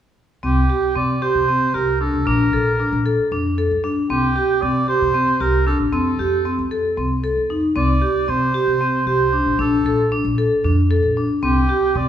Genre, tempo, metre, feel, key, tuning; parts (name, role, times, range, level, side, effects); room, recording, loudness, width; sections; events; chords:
contemporary instrumental, chamber music in an uneven meter; 229 BPM (eighths); 7/8; straight; A4 = 437 Hz
vibraphone with hard mallets; arpeggios; 0.4-12.1 s; C4 to A4; -19 LUFS; equal
upright bass; bass; 0.4-12.1 s; A1 to C3; -22 LUFS; equal
clear oboe; melody; 0.5-12.1 s; G4 to D5; -22 LUFS; right 1 dB
wet scoring stage reverb, RT60 1.5 s; recorded in a church or concert hall; -16 LUFS; side -10 dB against mid
0.4-12.1 A section
0.4 C5; 2.3 Bbmaj7; 4.1 C5; 5.9 F; 7.8 Csus2; 9.6 Bbmaj7; 11.4 C5